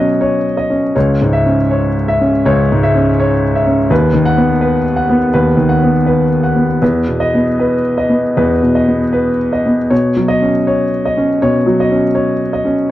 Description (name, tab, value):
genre	neoclassical minimalist piano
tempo	76-86 BPM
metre	4/4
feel	rubato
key	B major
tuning	A4 = 441 Hz
part	warm baby grand piano	solo	0.0-12.9 s	C#2 to D#7	-11 LUFS	equal	none
room	studio ambience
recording	dry, close 1970s-style studio recording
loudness	-11 LUFS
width	side -14 dB against mid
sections	0.0-12.9 A section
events	none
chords	0.0 Badd9; 0.9 C#m; 3.9 B/D#; 6.8 E5; 9.9 Badd9